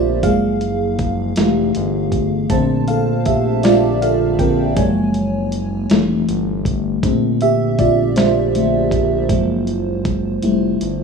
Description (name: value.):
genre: slow six-eight R&B.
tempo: 53 BPM (dotted quarters).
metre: 6/8.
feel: straight.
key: unclear.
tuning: A4 = 441 Hz.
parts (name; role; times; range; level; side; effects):
FM electric piano with soft pad layer; accompaniment; 0.0-11.0 s; D3 to A5; -16 LUFS; equal; chorus.
smooth synth bass; bass; 0.0-11.0 s; F1 to Bb1; -21 LUFS; right 1 dB; none.
dusty soul sampler-style drum kit; drums; 0.2-11.0 s; hi-hat, kick drum, snare drum; -21 LUFS; equal; none.
room: light reverb.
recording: rough home demo mix, small room ambience.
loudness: -15 LUFS.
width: side -5 dB against mid.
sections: 0.0-11.0 A section.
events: FM electric piano solo 0.0-11.0; drum fill 10.4-11.0.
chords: 0.2 Gbmaj9; 1.4 Fmaj9; 2.5 Bbmaj9; 4.8 Gbmaj9; 5.9 Fmaj9; 7.0 Bbmaj9; 9.3 Gbmaj9; 10.4 Fmaj9.